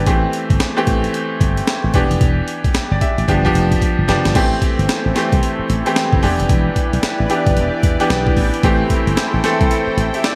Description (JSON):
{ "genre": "R&B, new jack swing", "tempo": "112 BPM", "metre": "4/4", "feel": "swing 62% on 16ths", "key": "A minor", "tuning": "A4 = 440 Hz", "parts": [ { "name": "bright grand piano", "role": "accompaniment", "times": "0.0-10.4 s", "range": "E3 to E5", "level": "-21 LUFS", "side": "equal", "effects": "none" }, { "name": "slap bass with an envelope filter", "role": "bass", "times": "0.0-10.1 s", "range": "E1 to E2", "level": "-21 LUFS", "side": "equal", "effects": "none" }, { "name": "breakbeat sampler-style drum kit", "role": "drums", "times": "0.1-10.4 s", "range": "crash cymbal, hi-hat, kick drum, snare drum", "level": "-21 LUFS", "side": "equal", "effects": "none" }, { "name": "phased analog pad", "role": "sustained chords", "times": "4.4-10.4 s", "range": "E4 to G5", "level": "-26 LUFS", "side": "equal", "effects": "phaser, chorus" } ], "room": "moderate lush hall reverb, RT60 1.8 s, digital ambience", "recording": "bright 1980s-style digital production", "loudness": "-16 LUFS", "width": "mono", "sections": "0.0-4.4 A section; 4.4-10.4 B section", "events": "drum fill 3.3-4.4", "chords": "0.1 Am7; 1.9 Em7; 3.3 G7; 4.4 Am7; 6.2 Em7; 8.6 Am7" }